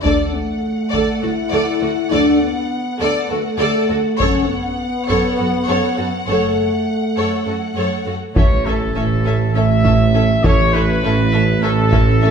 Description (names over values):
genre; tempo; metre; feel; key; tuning
cinematic, epic orchestral film score; 202 BPM (eighths); 7/8; straight; A major; A4 = 440 Hz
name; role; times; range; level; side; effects
rich symphonic violin section; melody; 0.0-12.3 s; E5 to F#5; -28 LUFS; left 3 dB; none
warm symphonic violin section; second line; 0.0-12.3 s; F#4 to D5; -24 LUFS; left 3 dB; none
rich symphonic viola section; accompaniment; 0.0-12.3 s; C#4 to A4; -24 LUFS; right 3 dB; none
mellow French horn section; sustained chords; 0.0-12.3 s; A3 to E4; -20 LUFS; left 2 dB; none
rich symphonic cello section; bass; 0.0-12.3 s; D2 to A2; -22 LUFS; right 5 dB; none
rich symphonic double bass section; bass; 0.0-12.3 s; F#1 to D2; -21 LUFS; right 2 dB; none
solo taiko drums; drums; 0.0-12.3 s; none; -19 LUFS; equal; none
bright trumpet section; stabs; 8.4-12.3 s; A4 to E5; -19 LUFS; left 1 dB; none
mellow tuba; bass; 8.4-12.3 s; A1; -22 LUFS; right 3 dB; none
sub drop; sound effects; 8.7-10.4 s; none; -30 LUFS; left 1 dB; none
room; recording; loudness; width
wet recital hall reverb, RT60 1.5 s; recorded in a church or concert hall; -14 LUFS; side -7 dB against mid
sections
0.0-8.4 A section; 8.4-12.3 A section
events
impact 8.4-10.4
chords
0.0 D; 4.2 F#m; 8.4 A